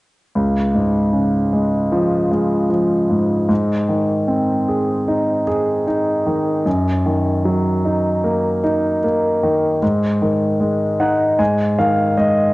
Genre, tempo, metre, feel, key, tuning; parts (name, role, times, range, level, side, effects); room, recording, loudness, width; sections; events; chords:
pop; 76 BPM; 4/4; straight; Db major; A4 = 440 Hz
clear concert grand piano; accompaniment; 0.4-12.5 s; Db2 to Ab5; -15 LUFS; equal
wet spring reverb, RT60 1.9 s; home recording on cassette, nothing above 10.5 kHz; -15 LUFS; side -20 dB against mid
0.3-12.5 A section
grand piano fill 10.6-12.5
0.3 Db; 3.5 Ab; 6.7 Ebm/Gb; 9.8 Ab5